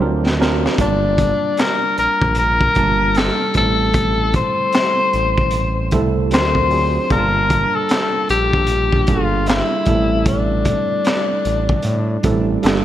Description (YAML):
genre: R&B, neo-soul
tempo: 76 BPM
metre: 4/4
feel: swing 61% on 16ths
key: G dorian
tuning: A4 = 440 Hz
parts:
  - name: breathy tenor saxophone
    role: melody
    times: 0.0-12.8 s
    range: D4 to C5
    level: -18 LUFS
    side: left 3 dB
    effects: none
  - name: tine electric piano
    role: accompaniment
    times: 0.0-12.8 s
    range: F#3 to A5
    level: -22 LUFS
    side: right 4 dB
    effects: overdrive
  - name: smooth synth bass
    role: bass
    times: 0.0-12.8 s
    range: G1 to A2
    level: -20 LUFS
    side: equal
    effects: none
  - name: crunchy breakbeat drum kit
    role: drums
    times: 0.3-12.8 s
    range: handclaps, hi-hat, kick drum, snare drum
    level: -21 LUFS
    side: equal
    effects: none
room: moderate lush hall reverb, RT60 2.8 s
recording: bright 1980s-style digital production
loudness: -14 LUFS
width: side -12 dB against mid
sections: 0.0-12.8 A section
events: drum fill 0.0-0.8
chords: 0.0 D7alt; 0.8 Gm9; 3.5 Am7; 6.3 D7alt; 7.1 Gm9; 9.9 Am7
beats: 0.00 | 0.79 1.57 2.37 3.15 | 3.94 4.73 5.52 6.31 | 7.10 7.89 8.68 9.47 | 10.26 11.05 11.84 12.63